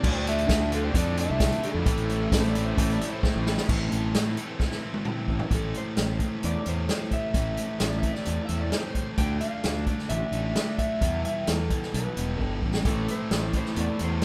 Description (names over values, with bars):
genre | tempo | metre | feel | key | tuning
classic rock | 131 BPM | 4/4 | straight | A minor | A4 = 438 Hz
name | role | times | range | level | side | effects
electric slide guitar | melody | 0.0-14.2 s | A4 to G5 | -36 LUFS | equal | none
octave-fuzz lead guitar | second line | 0.0-3.2 s | E4 to A4 | -42 LUFS | equal | distortion
picked steel-string acoustic guitar | accompaniment | 0.0-14.2 s | A2 to B4 | -42 LUFS | equal | none
biting overdriven guitar | riff | 0.0-14.2 s | E2 to E4 | -38 LUFS | equal | none
overdriven electric guitar | riff | 0.0-3.7, 12.8-14.2 s | A2 to D4 | -39 LUFS | equal | none
sludgy distorted guitar | riff | 0.0-14.2 s | A2 to A4 | -36 LUFS | equal | overdrive
fuzz fingered electric bass | bass | 0.0-14.2 s | E1 to A2 | -32 LUFS | equal | overdrive
vintage drum kit | drums | 0.0-14.2 s | crash cymbal, hi-hat, kick drum, snare drum, toms | -30 LUFS | equal | none
bluesy overdriven lead guitar | second line | 2.3-3.5, 7.8-9.1 s | C5 to E5 | -39 LUFS | equal | distortion
room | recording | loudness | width
moderate studio reverb, RT60 0.9 s | band playing live in one room | -27 LUFS | mono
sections
0.0-3.7 A section; 3.7-5.5 B section; 5.5-14.2 C section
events
drum fill 3.2-3.7, 4.6-5.5, 12.4-12.8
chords
0.0 Dmadd9; 1.9 Amadd9; 5.5 Am; 9.2 Dm; 11.0 Em; 12.8 Am